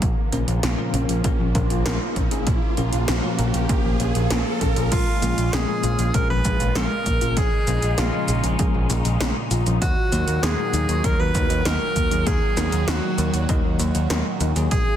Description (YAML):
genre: synthwave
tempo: 98 BPM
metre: 4/4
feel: straight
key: Bb minor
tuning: A4 = 440 Hz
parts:
  - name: phased analog pad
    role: sustained chords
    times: 0.0-15.0 s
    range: Bb2 to F5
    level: -29 LUFS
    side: right 1 dB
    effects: phaser, chorus, sidechain pumping
  - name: soft round pluck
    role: arpeggios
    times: 0.0-14.9 s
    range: Ab3 to Eb5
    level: -33 LUFS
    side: right 1 dB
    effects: lush chorus, tape echo
  - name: picked electric bass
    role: bass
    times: 0.0-14.8 s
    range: Bb1 to Eb2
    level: -23 LUFS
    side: equal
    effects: sidechain pumping
  - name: 80s electronic pad drums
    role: drums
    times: 0.0-14.8 s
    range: crash cymbal, hi-hat, shaker, snare drum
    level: -28 LUFS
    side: equal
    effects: none
  - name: electronic kick drum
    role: drums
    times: 0.0-14.8 s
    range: none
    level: -23 LUFS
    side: equal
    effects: none
  - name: riser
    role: sound effects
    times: 0.0-4.9 s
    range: none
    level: -31 LUFS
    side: right 2 dB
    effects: none
  - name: bell-like tine electric piano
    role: stabs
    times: 0.3-14.7 s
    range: Bb2 to Bb5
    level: -29 LUFS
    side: left 3 dB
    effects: fast stereo tremolo, tape echo
  - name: clear tenor saxophone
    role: melody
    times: 4.9-15.0 s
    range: F4 to Cb5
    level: -27 LUFS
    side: right 1 dB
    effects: tape echo
  - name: FM electric piano with soft pad layer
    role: second line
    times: 4.9-15.0 s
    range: F4 to Cb5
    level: -35 LUFS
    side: right 1 dB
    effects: none
room: light reverb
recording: dense, heavily limited modern master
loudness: -19 LUFS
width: side -10 dB against mid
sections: 0.0-4.9 A section; 4.9-15.0 B section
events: riser 0.0-4.9; filter sweep on analog synth pad 0.0-4.9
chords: 0.0 Bbm; 4.9 Bbm7; 9.8 Ebm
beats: | 0.02 0.63 1.25 1.86 | 2.47 3.08 3.69 4.31 | 4.92 5.53 6.14 6.76 | 7.37 7.98 8.59 9.21 | 9.82 10.43 11.04 11.65 | 12.27 12.88 13.49 14.10 | 14.72